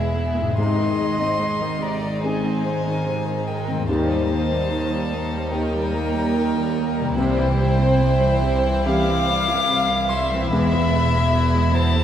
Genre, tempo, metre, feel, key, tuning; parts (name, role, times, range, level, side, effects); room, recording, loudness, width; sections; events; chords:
cinematic, emotional film score for orchestra; 73 BPM; 4/4; rubato; A4 = 443 Hz
warm symphonic violin section; melody; 0.0-12.0 s; Eb4 to E4; -32 LUFS; left 1 dB
warm violin; melody; 0.0-12.0 s; E5 to D6; -27 LUFS; left 4 dB
dark studio violin section; second line; 0.0-12.0 s; G#4 to F5; -26 LUFS; left 1 dB
felt-muted upright piano; accompaniment; 0.0-12.0 s; C2 to G#4; -27 LUFS; left 1 dB
warm studio viola section; accompaniment; 0.0-12.0 s; C3 to C4; -28 LUFS; right 1 dB
concert harp; arpeggios; 0.0-12.0 s; E2 to G#4; -28 LUFS; left 3 dB
warm symphonic cello section; bass; 0.0-12.0 s; C2 to Ab2; -27 LUFS; right 3 dB
warm symphonic double bass section; bass; 0.0-12.0 s; E1 to Eb2; -26 LUFS; right 2 dB
wet church reverb, RT60 3.5 s; recorded in a church or concert hall; -18 LUFS; side -10 dB against mid
0.0-12.0 A section
0.0 E; 0.6 Ab; 3.9 Eb; 7.2 C; 10.5 E